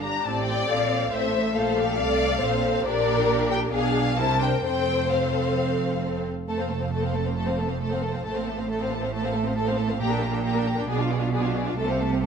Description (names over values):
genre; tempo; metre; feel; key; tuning
quick classical-period movement for string orchestra; 136 BPM; 4/4; straight; F major; A4 = 439 Hz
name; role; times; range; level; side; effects
dark symphonic violin section; melody; 0.0-12.3 s; D5 to Bb5; -30 LUFS; left 4 dB; none
rich symphonic viola section; accompaniment; 0.0-12.3 s; A3 to C5; -29 LUFS; right 1 dB; none
rich symphonic cello section; bass; 0.0-12.3 s; F2 to C3; -30 LUFS; right 3 dB; none
warm symphonic double bass section; bass; 0.0-12.3 s; F1 to C2; -30 LUFS; right 4 dB; none
warm symphonic violin section; second line; 0.2-12.3 s; F4 to D5; -27 LUFS; left 4 dB; none
room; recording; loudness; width
moderate scoring stage reverb, RT60 1.6 s; none; -22 LUFS; side -6 dB against mid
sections
0.0-6.5 A section; 6.5-12.3 B section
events
none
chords
0.0 F; 1.1 F/A; 2.9 Gm/Bb; 3.7 Bdim7; 4.2 C7; 4.6 F; 8.2 F/A; 10.0 Gm/Bb; 10.9 Bdim7